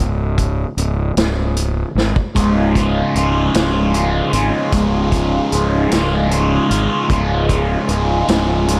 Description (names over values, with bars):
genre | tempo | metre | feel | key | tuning
psychedelic rock | 51 BPM (dotted quarters) | 6/8 | straight | C# major | A4 = 440 Hz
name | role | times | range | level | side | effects
fuzz fingered electric bass | bass | 0.0-8.8 s | C#1 to G#1 | -21 LUFS | equal | overdrive
vintage drum kit | drums | 0.4-8.8 s | hi-hat, kick drum, snare drum | -22 LUFS | equal | none
cranked stack guitar | riff | 2.3-8.8 s | C#2 to E#4 | -19 LUFS | equal | overdrive, phaser
room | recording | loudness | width
moderate lush hall reverb, RT60 2.6 s | dreamy mix soaked in reverb | -17 LUFS | mono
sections
0.0-8.8 A section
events
drum fill 2.0-2.4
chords
0.0 C#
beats
1.17 | 2.36 3.54 | 4.73 5.92 | 7.10 8.29